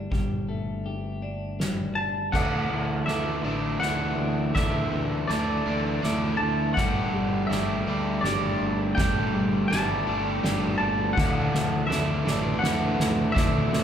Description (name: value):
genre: post-rock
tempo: 82 BPM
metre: 3/4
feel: straight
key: D major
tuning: A4 = 440 Hz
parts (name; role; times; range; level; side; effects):
- twelve-string electric guitar; arpeggios; 0.0-13.8 s; D3 to G4; -33 LUFS; left 3 dB; none
- growling fingered electric bass; bass; 0.0-13.8 s; G1 to D2; -31 LUFS; equal; overdrive
- soft-mallet drum kit; drums; 0.1-13.8 s; crash cymbal, kick drum, ride cymbal, snare drum; -29 LUFS; equal; none
- twangy electric guitar; melody; 2.0-13.8 s; D5 to A5; -30 LUFS; equal; none
- crunchy overdriven guitar; riff; 2.3-13.8 s; D3 to D5; -27 LUFS; right 1 dB; none
room: wet large studio reverb, RT60 1.3 s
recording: band playing live in one room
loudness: -23 LUFS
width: side -9 dB against mid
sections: 0.0-2.3 A section; 2.3-13.8 B section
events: build-up 2.3-13.8; drum fill 2.3-13.8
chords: 0.0 Gsus2; 2.3 Dsus2; 6.8 Gsus2; 11.2 Dsus2